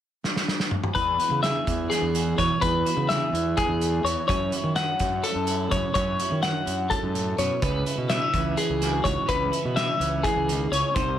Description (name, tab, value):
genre	math rock and midwest emo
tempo	252 BPM (eighths)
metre	7/8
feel	straight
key	E major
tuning	A4 = 443 Hz
part	loose indie drum kit	drums	0.2-11.1 s	hi-hat, kick drum, snare drum, toms	-29 LUFS	right 1 dB	none
part	twelve-string electric guitar	arpeggios	0.9-11.2 s	G#4 to F#5	-25 LUFS	left 4 dB	none
part	twelve-string electric guitar	accompaniment	1.0-11.2 s	E2 to G#4	-30 LUFS	right 9 dB	none
part	fuzz fingered electric bass	bass	1.0-11.2 s	B#1 to D#3	-29 LUFS	right 1 dB	overdrive
room	light reverb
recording	none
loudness	-22 LUFS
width	side -10 dB against mid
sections	0.9-11.2 A section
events	drum fill 0.2-0.9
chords	0.0 N.C.; 0.9 E6; 4.3 F#m7; 7.6 C#m7